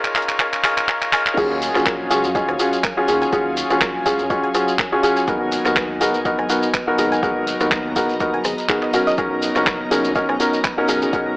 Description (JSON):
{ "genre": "deep house", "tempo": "123 BPM", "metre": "4/4", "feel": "swing 55% on 16ths", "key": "unclear", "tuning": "A4 = 439 Hz", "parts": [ { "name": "airy breathy pad", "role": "sustained chords", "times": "0.0-11.4 s", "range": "F#3 to A#5", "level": "-28 LUFS", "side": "equal", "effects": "chorus, sidechain pumping" }, { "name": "felt-muted upright piano", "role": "stabs", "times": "0.0-11.4 s", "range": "B3 to A#4", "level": "-19 LUFS", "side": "equal", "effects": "sidechain pumping, tape echo" }, { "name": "deep house drum kit", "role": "drums", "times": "0.0-11.2 s", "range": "crash cymbal, handclaps, hi-hat, rim click", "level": "-23 LUFS", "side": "equal", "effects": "overdrive" }, { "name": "soft round pluck", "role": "arpeggios", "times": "0.2-11.2 s", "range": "F#4 to G#5", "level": "-26 LUFS", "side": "equal", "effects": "chorus, sidechain pumping, tape echo" }, { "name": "electronic kick drum", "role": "drums", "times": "0.2-11.2 s", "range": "none", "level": "-29 LUFS", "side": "equal", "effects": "overdrive" }, { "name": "round analog bass", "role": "bass", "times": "1.4-11.4 s", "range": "F#1 to F#2", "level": "-32 LUFS", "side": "equal", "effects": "sidechain pumping" }, { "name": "shekere", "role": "percussion", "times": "1.4-11.2 s", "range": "none", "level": "-29 LUFS", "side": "equal", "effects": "none" } ], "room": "light reverb, digital ambience", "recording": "dry, gritty hardware recording, high-pass filter, AM radio sound", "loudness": "-16 LUFS", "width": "side -24 dB against mid", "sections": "0.0-1.4 A section; 1.4-11.4 B section", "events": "build-up 0.0-1.4; drum fill 0.0-1.4; filter sweep on synth arpeggio sound 0.0-1.4; drop 1.4-11.4", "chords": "0.0 A#m7/C#; 1.4 D#m11; 5.3 G#m7; 8.9 Bmaj7", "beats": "0.40 0.89 | 1.38 1.86 2.35 2.84 | 3.33 3.81 4.30 4.79 | 5.28 5.76 6.25 6.74 | 7.23 7.72 8.20 8.69 | 9.18 9.67 10.15 10.64 | 11.13" }